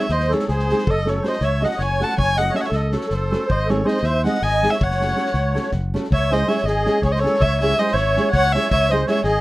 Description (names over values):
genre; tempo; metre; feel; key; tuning
balkan folk, Balkan wedding band; 321 BPM (eighths); 7/8; straight; unclear; A4 = 440 Hz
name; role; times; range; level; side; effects
dark violin; melody; 0.0-9.4 s; B#4 to A5; -22 LUFS; left 1 dB; none
musette accordion; second line; 0.0-9.4 s; G#4 to F#5; -23 LUFS; right 1 dB; none
nylon-string guitar; accompaniment; 0.0-9.2 s; G#3 to A4; -23 LUFS; right 1 dB; none
vintage drum kit; percussion; 0.0-9.3 s; kick drum, snare drum; -28 LUFS; equal; none
fretless electric bass; bass; 0.1-9.4 s; F#1 to D#2; -22 LUFS; equal; none
room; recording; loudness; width
little or no reverb; rough home demo mix; -17 LUFS; side -18 dB against mid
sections
0.0-6.1 A section; 6.1-9.4 B section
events
none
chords
0.0 G#; 0.9 F#m; 3.5 G#; 4.8 F#m; 6.1 C#m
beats
0.12 0.31 0.50 0.69 | 0.87 1.06 1.25 1.44 1.62 1.81 2.00 | 2.19 2.37 2.56 2.75 2.93 3.12 3.31 | 3.50 3.68 3.87 4.05 4.24 4.43 4.62 | 4.80 4.99 5.18 5.36 5.55 5.74 5.92 | 6.11 6.29 6.48 6.67 6.85 7.04 7.22 | 7.41 7.60 7.78 7.97 8.15 8.34 8.53 | 8.71 8.90 9.08 9.27